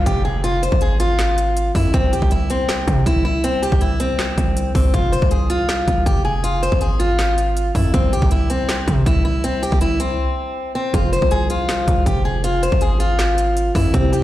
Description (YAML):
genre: hip hop, trap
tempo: 160 BPM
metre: 4/4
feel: half-time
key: F harmonic minor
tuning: A4 = 440 Hz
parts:
  - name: picked steel-string acoustic guitar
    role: melody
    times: 0.0-14.2 s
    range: C4 to C5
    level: -20 LUFS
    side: left 1 dB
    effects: tape echo
  - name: distorted 808-style bass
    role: bass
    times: 0.0-14.2 s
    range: F1 to C3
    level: -19 LUFS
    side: equal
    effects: distortion
  - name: downlifter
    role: sound effects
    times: 0.0-1.9 s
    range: none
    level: -35 LUFS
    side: equal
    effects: none
  - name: trap drum kit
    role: drums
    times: 0.1-14.2 s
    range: handclaps, hi-hat, kick drum, snare drum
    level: -20 LUFS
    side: equal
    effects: overdrive
  - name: muted felt-like synth keys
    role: accompaniment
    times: 10.9-14.2 s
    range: C3 to C5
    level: -25 LUFS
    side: right 2 dB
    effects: chorus
room: digital ambience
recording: played on a big sound system in a bare room, large studio reverb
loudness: -16 LUFS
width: side -14 dB against mid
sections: 0.0-14.2 A section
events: break 10.2-10.9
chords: 0.0 Fm; 1.9 C; 4.9 Fm; 7.9 C; 10.9 Fm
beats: 0.06 | 0.44 0.81 1.19 1.56 | 1.94 2.31 2.69 3.06 | 3.44 3.81 4.19 4.56 | 4.94 5.31 5.69 6.06 | 6.44 6.81 7.19 7.56 | 7.94 8.31 8.69 9.06 | 9.44 9.81 10.19 10.56 | 10.94 11.31 11.69 12.06 | 12.44 12.81 13.19 13.56 | 13.94